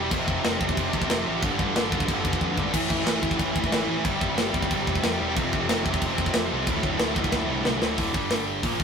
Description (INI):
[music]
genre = heavy metal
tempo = 183 BPM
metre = 4/4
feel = straight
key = D minor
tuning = A4 = 437 Hz
[part]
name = high-gain distorted guitar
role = riff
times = 0.0-8.8 s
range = D2 to Bb3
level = -25 LUFS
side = equal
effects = distortion
[part]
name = fuzz picked electric bass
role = bass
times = 0.0-8.8 s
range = D1 to F2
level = -33 LUFS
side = equal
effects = overdrive
[part]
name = tight metal drum kit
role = drums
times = 0.1-8.8 s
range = china cymbal, crash cymbal, hi-hat, kick drum, snare drum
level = -26 LUFS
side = equal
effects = none
[sound]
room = light reverb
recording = rough rehearsal-room recording, warm saturation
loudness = -22 LUFS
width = side -6 dB against mid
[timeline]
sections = 0.0-8.0 A section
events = drum fill 2.4-2.7, 7.3-8.0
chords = 0.1 F5; 1.4 G5; 2.7 A5; 4.0 C5/G; 5.4 F5; 6.7 D5; 8.1 G5